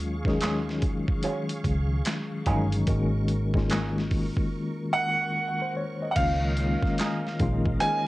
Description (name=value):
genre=R&B, neo-soul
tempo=73 BPM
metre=4/4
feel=swing 63% on 16ths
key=Db major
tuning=A4 = 440 Hz
part: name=mellow tine electric piano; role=accompaniment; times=0.0-8.1 s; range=Eb3 to Eb5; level=-29 LUFS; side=left 2 dB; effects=medium tremolo, cassette tape
part: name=bright tonewheel organ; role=sustained chords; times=0.0-8.1 s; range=Db4 to Db6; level=-41 LUFS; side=right 2 dB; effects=chorus vibrato, slow rotary speaker, cassette tape
part: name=vintage muted fingered electric bass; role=bass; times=0.0-7.8 s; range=G1 to Eb2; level=-28 LUFS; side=equal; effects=none
part: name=boom bap sampler-style drum kit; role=drums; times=0.2-8.0 s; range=crash cymbal, handclaps, hi-hat, kick drum, snare drum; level=-29 LUFS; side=equal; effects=none
part: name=electric guitar through a small old amp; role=second line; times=0.4-8.0 s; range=F3 to Ab4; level=-33 LUFS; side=right 4 dB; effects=wah, tremolo, cassette tape
part: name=bright concert grand piano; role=melody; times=4.9-8.1 s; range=F5 to Ab5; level=-27 LUFS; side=right 1 dB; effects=cassette tape
room=light reverb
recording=home recording on cassette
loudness=-24 LUFS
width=side -18 dB against mid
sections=0.0-6.2 A section; 6.2-8.1 B section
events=break 4.5-6.2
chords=0.0 Ebm11; 2.9 Ab9sus4; 6.2 Db69